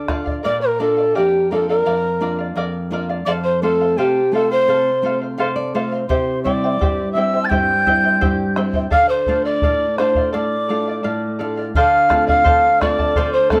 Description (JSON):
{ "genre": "andean folk, Andean ensemble", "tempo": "85 BPM", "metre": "2/4", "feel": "straight", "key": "unclear", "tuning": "A4 = 438 Hz", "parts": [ { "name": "mellow hollow polished pan flute", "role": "melody", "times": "0.0-13.6 s", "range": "G4 to A5", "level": "-19 LUFS", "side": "equal", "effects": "none" }, { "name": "quena", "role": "second line", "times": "0.0-13.6 s", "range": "G5 to A6", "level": "-26 LUFS", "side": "equal", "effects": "tape echo" }, { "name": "charango", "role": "accompaniment", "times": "0.0-13.6 s", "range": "E4 to A5", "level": "-28 LUFS", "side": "equal", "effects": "none" }, { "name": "nylon-string guitar", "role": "accompaniment", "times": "0.0-13.6 s", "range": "F2 to F5", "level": "-26 LUFS", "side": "equal", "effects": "none" }, { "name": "bombo", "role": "percussion", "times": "0.1-0.4, 6.1-13.6 s", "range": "none", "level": "-24 LUFS", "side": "equal", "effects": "none" } ], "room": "moderate studio reverb, RT60 0.5 s", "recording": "none", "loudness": "-18 LUFS", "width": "mono", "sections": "0.4-11.8 A section; 11.8-13.6 B section", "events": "nylon-string guitar fill 5.0-6.1; break 10.3-11.8", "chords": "0.4 Bb; 3.3 F; 6.1 C; 8.9 Dm; 11.8 F/D" }